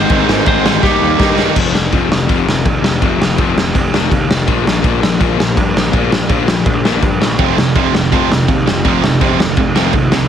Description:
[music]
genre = punk rock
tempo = 165 BPM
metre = 4/4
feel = straight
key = unclear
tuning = A4 = 440 Hz
[part]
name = lightly driven lead guitar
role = melody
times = 0.0-1.3 s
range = G4 to C5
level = -18 LUFS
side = left 2 dB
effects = none
[part]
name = distorted electric guitar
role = riff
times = 0.0-1.6, 7.4-10.3 s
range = F2 to Eb4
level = -15 LUFS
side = right 11 dB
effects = overdrive
[part]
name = overdriven semi-hollow guitar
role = riff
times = 0.0-10.3 s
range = F2 to Eb4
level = -17 LUFS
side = left 13 dB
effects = none
[part]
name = fuzz picked electric bass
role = bass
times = 0.0-10.3 s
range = F1 to G2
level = -19 LUFS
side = right 1 dB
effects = overdrive
[part]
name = raw garage drum kit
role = drums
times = 0.1-10.2 s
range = crash cymbal, kick drum, ride cymbal, snare drum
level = -14 LUFS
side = right 1 dB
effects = none
[sound]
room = little or no reverb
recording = heavily compressed radio sound, multiband compression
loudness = -11 LUFS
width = side -9 dB against mid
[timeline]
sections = 0.0-1.6 A section; 1.6-10.3 B section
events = drum fill 0.8-1.6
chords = 0.0 Ab; 0.8 Eb; 1.6 F5; 4.5 Bb5; 7.4 F5

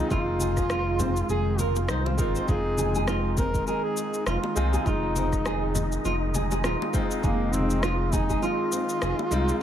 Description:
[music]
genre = organic downtempo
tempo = 101 BPM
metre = 4/4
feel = swing 57% on 16ths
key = F minor pentatonic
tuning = A4 = 442 Hz
[part]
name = warm duduk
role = melody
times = 0.0-9.6 s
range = Bb3 to Bb4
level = -30 LUFS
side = equal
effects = tape echo
[part]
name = felt-muted upright piano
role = accompaniment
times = 0.0-9.6 s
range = Ab3 to F4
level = -33 LUFS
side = equal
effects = sidechain pumping, digital delay
[part]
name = warm analog pad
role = sustained chords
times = 0.0-9.6 s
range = Eb3 to F4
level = -34 LUFS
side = left 1 dB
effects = chorus, sidechain pumping
[part]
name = nylon-string guitar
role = arpeggios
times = 0.1-9.2 s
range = C4 to C5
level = -31 LUFS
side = right 2 dB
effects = vintage 12-bit sampler grit, digital delay
[part]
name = smooth synth bass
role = bass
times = 0.1-9.5 s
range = Eb1 to C2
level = -28 LUFS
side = equal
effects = tube saturation, sidechain pumping
[part]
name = electronic kick drum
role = drums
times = 0.1-8.4 s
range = none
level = -29 LUFS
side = equal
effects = none
[part]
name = electronic shaker and rim click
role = drums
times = 0.1-9.6 s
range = none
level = -33 LUFS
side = left 1 dB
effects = none
[part]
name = congas and bongos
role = percussion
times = 0.1-9.6 s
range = none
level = -34 LUFS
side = left 2 dB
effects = none
[part]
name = wind-like tuned noise texture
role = texture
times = 4.0-9.6 s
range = Eb4 to Eb5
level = -39 LUFS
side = equal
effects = built-in reverb
[sound]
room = light reverb, small room ambience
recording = none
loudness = -23 LUFS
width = side -10 dB against mid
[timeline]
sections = 0.0-9.6 A section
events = none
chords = 0.0 Fm7

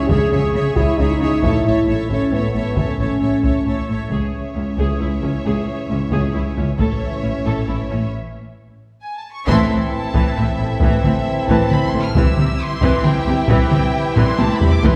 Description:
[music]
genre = cinematic, epic orchestral film score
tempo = 134 BPM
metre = 3/4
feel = straight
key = A minor from 9.5 s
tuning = A4 = 440 Hz
[part]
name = clear symphonic violin section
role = second line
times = 0.0-15.0 s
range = G4 to E5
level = -32 LUFS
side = equal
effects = none
[part]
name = clear symphonic viola section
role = accompaniment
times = 0.0-15.0 s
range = E3 to C#5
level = -28 LUFS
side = equal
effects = none
[part]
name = mellow French horn section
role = sustained chords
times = 0.0-15.0 s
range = E3 to G#4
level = -25 LUFS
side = equal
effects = none
[part]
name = rich symphonic cello section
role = bass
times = 0.1-14.9 s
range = C#2 to C#3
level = -25 LUFS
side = equal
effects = none
[part]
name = rich symphonic double bass section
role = bass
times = 0.1-14.9 s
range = A1 to C#2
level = -25 LUFS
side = equal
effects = none
[part]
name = taiko ensemble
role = drums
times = 0.1-15.0 s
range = none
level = -22 LUFS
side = equal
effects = none
[part]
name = clear symphonic violin section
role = melody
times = 4.1-15.0 s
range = E5 to F6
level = -30 LUFS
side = equal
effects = none
[part]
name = timpani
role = percussion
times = 14.8-15.0 s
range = A2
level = -20 LUFS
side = equal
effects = none
[sound]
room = wet scoring stage reverb, RT60 1.6 s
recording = heard from further back in the room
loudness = -18 LUFS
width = mono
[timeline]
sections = 0.0-4.1 A section; 4.1-9.5 B section; 9.5-15.0 C section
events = break 8.1-9.5; drum fill 8.8-9.5, 14.2-14.8; band accent 9.5-9.9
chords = 0.0 C#m; 1.4 A; 4.1 C#m; 6.8 A; 9.5 Am; 12.2 C

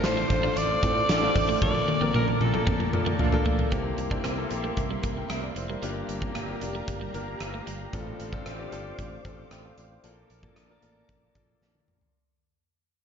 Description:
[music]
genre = 1980s-style pop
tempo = 114 BPM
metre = 4/4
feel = straight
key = unclear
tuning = A4 = 440 Hz
[part]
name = breathy alto saxophone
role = melody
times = 0.0-2.9 s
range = A4 to D5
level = -28 LUFS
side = left 1 dB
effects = slapback echo, ping-pong delay
[part]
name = clear grand piano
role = accompaniment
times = 0.0-12.2 s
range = G2 to G5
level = -32 LUFS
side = left 2 dB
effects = slapback echo
[part]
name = string machine, violas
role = sustained chords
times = 0.0-12.1 s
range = Bb3 to D6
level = -38 LUFS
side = right 2 dB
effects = phaser, ensemble chorus
[part]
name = fingered electric bass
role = bass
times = 0.0-12.1 s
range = F1 to Bb2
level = -34 LUFS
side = right 1 dB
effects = none
[part]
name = big rock drum kit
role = drums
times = 0.0-12.1 s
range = hi-hat, kick drum, rim click, snare drum, tambourine, toms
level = -29 LUFS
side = equal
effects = none
[part]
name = clean electric guitar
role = riff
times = 0.2-7.8 s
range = G3 to D4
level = -37 LUFS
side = right 5 dB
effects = wide subtle chorus, ping-pong delay
[part]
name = analog synth brass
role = stabs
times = 0.3-3.4 s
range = D4 to A4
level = -38 LUFS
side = right 1 dB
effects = none
[sound]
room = moderate lush hall reverb, RT60 2.4 s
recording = big arena sound, nothing above 7.5 kHz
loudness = -25 LUFS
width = side -7 dB against mid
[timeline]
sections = 0.0-3.7 A section; 3.7-12.1 B section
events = drum fill 1.6-3.7, 11.6-12.1; grand piano fill 2.9-3.7; fade-out 3.7-12.1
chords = 0.0 Dm7/A; 1.6 Bbmaj7; 3.7 C7; 5.8 Gm7; 7.9 Dm7; 10.0 Bbmaj7

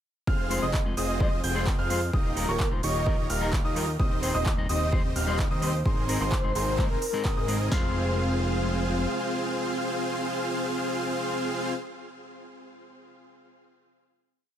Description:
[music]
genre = EDM, festival progressive house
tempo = 129 BPM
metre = 4/4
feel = straight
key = F minor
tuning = A4 = 439 Hz
[part]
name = dark baby grand piano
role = arpeggios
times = 0.3-11.7 s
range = C6 to G6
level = -36 LUFS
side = right 3 dB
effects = sidechain pumping, tape echo
[part]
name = dense compressed supersaw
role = riff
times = 0.3-11.7 s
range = C4 to G5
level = -30 LUFS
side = equal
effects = sidechain pumping, tape echo
[part]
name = fat analog bass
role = bass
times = 0.3-9.1 s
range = Eb1 to F2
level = -30 LUFS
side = equal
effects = sidechain pumping
[part]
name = big-room dance drum kit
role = drums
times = 0.3-7.8 s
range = kick drum, snare drum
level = -26 LUFS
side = equal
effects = none
[part]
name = clean electric guitar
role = accompaniment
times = 0.5-11.8 s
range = Ab2 to Eb5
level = -35 LUFS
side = left 3 dB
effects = vintage 12-bit sampler grit, sidechain pumping, tape echo
[part]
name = big-room dance drum kit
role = drums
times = 0.5-7.6 s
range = handclaps, hi-hat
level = -36 LUFS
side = right 2 dB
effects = none
[part]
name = breathy flute-like synth lead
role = melody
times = 0.6-7.6 s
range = Bb4 to Eb5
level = -35 LUFS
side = left 1 dB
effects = ensemble chorus, tape echo
[sound]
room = little or no reverb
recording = none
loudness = -24 LUFS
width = side -10 dB against mid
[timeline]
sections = 0.3-7.7 drop; 7.7-11.4 final chord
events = drop 0.3-7.7; band accent 7.3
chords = 0.3 Fm; 2.1 Ebadd9; 4.0 Cm/Eb; 5.9 Abadd9; 7.7 Fm

